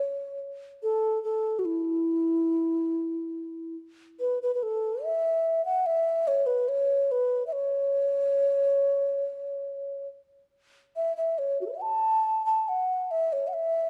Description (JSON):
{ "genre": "chinese traditional, Chinese chamber ensemble", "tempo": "71 BPM", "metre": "4/4", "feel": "rubato", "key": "unclear", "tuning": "A4 = 440 Hz", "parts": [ { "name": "mellow low xiao", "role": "solo", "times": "0.0-13.9 s", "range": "E4 to A5", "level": "-27 LUFS", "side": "equal", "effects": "none" } ], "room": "moderate concert hall reverb, RT60 1.8 s", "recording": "dark, warm production", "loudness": "-27 LUFS", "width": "mono", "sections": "0.0-13.9 A section", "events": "none", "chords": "none" }